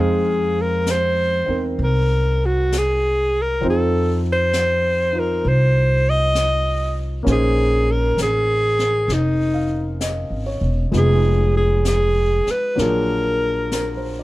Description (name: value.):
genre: jazz ballad.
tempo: 65 BPM.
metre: 4/4.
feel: swing 67% on 8ths.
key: unclear.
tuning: A4 = 440 Hz.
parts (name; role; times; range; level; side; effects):
breathy alto saxophone; melody; 0.0-14.2 s; Eb4 to Eb5; -19 LUFS; equal; none.
warm grand piano; accompaniment; 0.0-14.2 s; F3 to F5; -25 LUFS; equal; none.
upright bass; bass; 0.0-14.2 s; E1 to F2; -20 LUFS; equal; none.
jazz brush drum kit; drums; 0.9-14.2 s; brushed snare drum, hi-hat, snare drum; -31 LUFS; left 2 dB; none.
room: little or no reverb.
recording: dark, warm production.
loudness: -16 LUFS.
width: side -18 dB against mid.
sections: 0.0-14.2 A section.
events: none.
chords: 0.0 Fm7; 3.6 F5; 7.3 Bbm11; 10.9 Fm7b5; 12.8 Bb7b13.